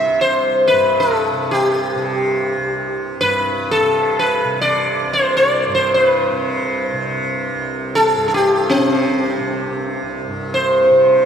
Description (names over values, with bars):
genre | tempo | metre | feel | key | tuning
indian classical, Hindustani | free time | none | none | C raga yaman | A4 = 440 Hz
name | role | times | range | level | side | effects
sitar | melody | 0.0-11.3 s | C4 to E5 | -15 LUFS | equal | none
tanpura | drone | 0.0-11.3 s | C2 to C3 | -23 LUFS | equal | none
room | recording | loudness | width
wet cathedral reverb, RT60 5.0 s | in a vast, echoing space | -15 LUFS | side -8 dB against mid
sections
0.0-10.3 A section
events
none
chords
none